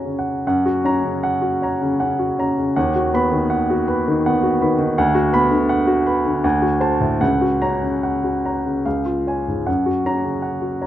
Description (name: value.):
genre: classical, romantic character piece for solo piano.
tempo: 69-83 BPM.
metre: 3/4.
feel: rubato.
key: F# major.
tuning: A4 = 440 Hz.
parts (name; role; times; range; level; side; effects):
warm baby grand piano; solo; 0.0-10.9 s; C#2 to B5; -17 LUFS; equal; none.
room: moderate recital hall reverb, RT60 1.7 s.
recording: dark, warm production.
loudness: -17 LUFS.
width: side -12 dB against mid.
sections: 0.4-10.9 A section.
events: none.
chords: 0.4 F#; 2.8 B/D#; 5.0 Bm/D; 6.4 D7; 7.2 F#/C#; 8.8 C#; 9.7 F#.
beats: | 0.44 1.23 2.00 | 2.76 3.50 4.24 | 4.97 5.70 6.44 | 7.21 8.04 8.85 | 9.67 10.44.